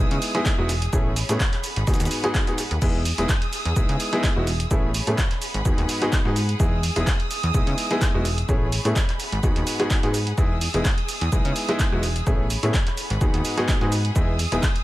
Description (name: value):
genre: piano house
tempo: 127 BPM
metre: 4/4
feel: swing 54% on 16ths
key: E major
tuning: A4 = 440 Hz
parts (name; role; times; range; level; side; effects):
- rich studio violin section; sustained chords; 0.0-14.8 s; G#4 to E6; -32 LUFS; right 1 dB; sidechain pumping
- clear baby grand piano; riff; 0.0-14.6 s; G#2 to G#4; -26 LUFS; equal; sidechain pumping, dub echo
- plucky analog bass; bass; 0.0-14.6 s; E1 to C#3; -24 LUFS; equal; sidechain pumping
- dusty soul sampler-style drum kit; drums; 0.1-14.8 s; hi-hat, shaker, snare drum; -36 LUFS; right 1 dB; high-pass filter on perc, high-pass filter on hats, high-pass filter on snare
- punchy analog drum machine; drums; 0.1-14.8 s; crash cymbal, handclaps, hi-hat; -29 LUFS; right 1 dB; none
- electronic kick drum; drums; 0.5-14.7 s; none; -22 LUFS; equal; none
room: digital ambience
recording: none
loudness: -20 LUFS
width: side -16 dB against mid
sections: 0.0-14.8 A section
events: none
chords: 0.0 Emaj7; 0.9 Amaj9; 1.6 G#m7; 2.8 Emaj7; 4.7 Amaj9; 5.4 G#m7; 6.6 Emaj7; 8.5 Amaj9; 9.2 G#m7; 10.4 Emaj7; 12.3 Amaj9; 13.0 G#m7; 14.2 Emaj7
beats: 0.46 | 0.93 1.40 1.87 2.35 | 2.82 3.29 3.76 4.24 | 4.71 5.18 5.65 6.12 | 6.60 7.07 7.54 8.02 | 8.49 8.96 9.43 9.90 | 10.38 10.85 11.32 11.79 | 12.27 12.74 13.21 13.68 | 14.16 14.63